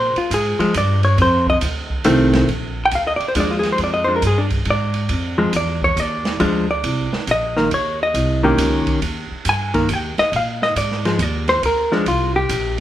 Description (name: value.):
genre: jazz, small-group swing and bop.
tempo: 138 BPM.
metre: 3/4.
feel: swing 66% on 8ths.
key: Bb mixolydian.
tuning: A4 = 439 Hz.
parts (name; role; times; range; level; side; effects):
hollow-body jazz guitar; accompaniment; 0.0-12.8 s; Eb3 to Ab5; -18 LUFS; left 1 dB; none.
upright bass; bass; 0.0-12.8 s; Bb1 to Bb2; -21 LUFS; equal; none.
open jazz drum kit; drums; 0.2-12.8 s; hi-hat, kick drum, ride cymbal, snare drum; -26 LUFS; right 2 dB; none.
room: light reverb.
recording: band playing live in one room.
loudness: -16 LUFS.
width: side -12 dB against mid.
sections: 0.0-2.5 A section; 2.5-12.8 A section.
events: none.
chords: 0.0 Bb7; 1.2 F7; 2.5 Bb7; 7.7 Eb7; 10.3 Bb7.